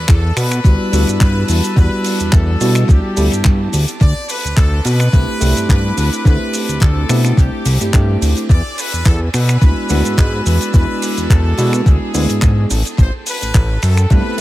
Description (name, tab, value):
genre	nu-disco, nu disco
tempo	107 BPM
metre	4/4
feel	swing 54% on 16ths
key	E minor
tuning	A4 = 440 Hz
part	brilliant trumpet section	melody	0.0-14.4 s	G4 to D5	-24 LUFS	left 2 dB	tape echo
part	rich chamber string section	sustained chords	0.0-14.4 s	C4 to E6	-31 LUFS	right 1 dB	sidechain pumping
part	fat analog bass	bass	0.0-14.2 s	A1 to B2	-15 LUFS	equal	tube saturation
part	damped 70s drum kit	drums	0.1-14.4 s	finger snaps, handclaps, hi-hat, ride cymbal, shaker	-23 LUFS	equal	tape echo
part	electronic kick drum	drums	0.1-14.2 s	none	-12 LUFS	equal	none
part	tine electric piano	accompaniment	0.6-14.4 s	G3 to G#4	-20 LUFS	equal	analog chorus, sidechain pumping, tape echo
room	studio reverb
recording	echo-heavy mix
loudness	-12 LUFS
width	side -16 dB against mid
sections	0.0-14.4 A section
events	none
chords	0.0 Em7; 3.7 D7sus4; 8.5 E7; 12.7 Am7